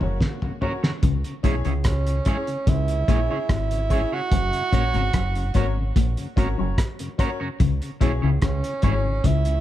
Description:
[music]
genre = roots reggae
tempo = 73 BPM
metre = 4/4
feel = straight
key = unclear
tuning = A4 = 438 Hz
[part]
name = warm horn section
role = second line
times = 0.0-0.6 s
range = C#3 to F#4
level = -41 LUFS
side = left 2 dB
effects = tape echo
[part]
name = mellow tonewheel organ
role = accompaniment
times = 0.0-9.6 s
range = F#2 to C#4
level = -35 LUFS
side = left 2 dB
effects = chorus vibrato, stopped rotary speaker
[part]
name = clear baby grand piano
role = stabs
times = 0.0-9.0 s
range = C#4 to C#5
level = -34 LUFS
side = left 4 dB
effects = none
[part]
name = deep dub fingered electric bass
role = bass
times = 0.0-9.6 s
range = F#1 to C#2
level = -24 LUFS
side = equal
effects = none
[part]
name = cloth-damped thuddy drum kit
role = drums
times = 0.0-9.6 s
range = hi-hat, kick drum, rim click, snare drum, toms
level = -23 LUFS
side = equal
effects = none
[part]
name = electric guitar at the edge of break-up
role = accompaniment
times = 0.6-8.9 s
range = C#4 to C#5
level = -34 LUFS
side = right 3 dB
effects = tape echo
[part]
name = semi-hollow electric guitar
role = riff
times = 1.0-9.5 s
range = F#2 to C#3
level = -28 LUFS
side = left 6 dB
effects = none
[part]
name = breathy tenor saxophone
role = melody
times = 1.9-9.6 s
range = C#4 to F#4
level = -27 LUFS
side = right 5 dB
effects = tape echo
[sound]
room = little or no reverb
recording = dark, warm production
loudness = -20 LUFS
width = side -13 dB against mid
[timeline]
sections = 0.0-1.0 A section; 1.0-9.6 B section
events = drum fill 0.0-1.0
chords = 0.0 F#; 1.0 C#m; 4.3 F#; 7.6 C#m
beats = 0.21 | 1.03 1.85 2.67 3.50 | 4.32 5.14 5.96 6.78 | 7.60 8.42 9.24

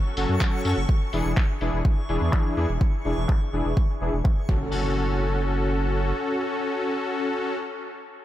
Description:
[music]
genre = progressive house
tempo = 125 BPM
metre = 4/4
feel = straight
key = F# minor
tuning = A4 = 440 Hz
[part]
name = downlifter and impact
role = sound effects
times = 0.1-0.9, 4.5-7.6 s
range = none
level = -38 LUFS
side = right 1 dB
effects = none
[part]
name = backwards swelling texture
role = texture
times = 0.0-4.7 s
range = C#6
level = -40 LUFS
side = right 2 dB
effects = built-in reverb, sidechain pumping
[part]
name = soft supersaw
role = stabs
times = 0.2-7.6 s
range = E3 to A4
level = -26 LUFS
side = left 1 dB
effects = sidechain pumping, low-pass filter, dub echo
[part]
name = saturated sub bass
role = bass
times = 0.2-6.1 s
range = E1 to F#2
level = -26 LUFS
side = equal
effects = sidechain pumping
[part]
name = deep house drum kit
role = drums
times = 0.2-4.6 s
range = crash cymbal, handclaps, hi-hat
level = -35 LUFS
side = equal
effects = overdrive, low-pass filter on snare, low-pass filter on hats, low-pass filter on perc, low-pass filter on cymbals, low-pass filter on room
[part]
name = electronic kick drum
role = drums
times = 0.4-4.6 s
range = none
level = -22 LUFS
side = equal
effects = overdrive
[sound]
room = light reverb, digital ambience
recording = none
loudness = -22 LUFS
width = side -13 dB against mid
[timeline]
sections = 0.0-4.7 A section; 4.7-8.2 B section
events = filter sweep on sub bass 0.0-4.7; filter sweep on supersaw synth 0.0-4.7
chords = 0.0 F#m; 0.9 E7; 4.5 F#m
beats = 0.41 | 0.89 1.37 1.85 2.33 | 2.81 3.29 3.77 4.25 | 4.73 5.21 5.69 6.17 | 6.65 7.13

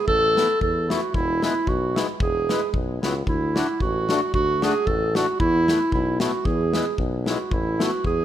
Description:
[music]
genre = alpine folk, alpine dance band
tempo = 113 BPM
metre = 2/4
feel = swing 54% on 8ths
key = unclear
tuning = A4 = 440 Hz
[part]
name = mellow clarinet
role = melody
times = 0.0-8.2 s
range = E4 to A4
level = -23 LUFS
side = right 2 dB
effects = none
[part]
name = clear tuba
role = bass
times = 0.1-8.2 s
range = E1 to E2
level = -27 LUFS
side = equal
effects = none
[part]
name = natural country drum kit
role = drums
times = 0.1-8.2 s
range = kick drum, snare drum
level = -27 LUFS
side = left 1 dB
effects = none
[part]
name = accordion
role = accompaniment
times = 0.4-7.9 s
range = G#3 to F#4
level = -29 LUFS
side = left 5 dB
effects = none
[sound]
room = light reverb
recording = none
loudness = -20 LUFS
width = side -11 dB against mid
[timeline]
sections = 0.0-8.2 A section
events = none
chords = 0.0 Asus2; 1.1 E; 3.3 D; 5.4 Esus4; 6.5 E; 7.5 Asus2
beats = | 0.08 0.61 | 1.15 1.68 | 2.21 2.74 | 3.28 3.81 | 4.34 4.87 | 5.40 5.93 | 6.46 6.99 | 7.52 8.05

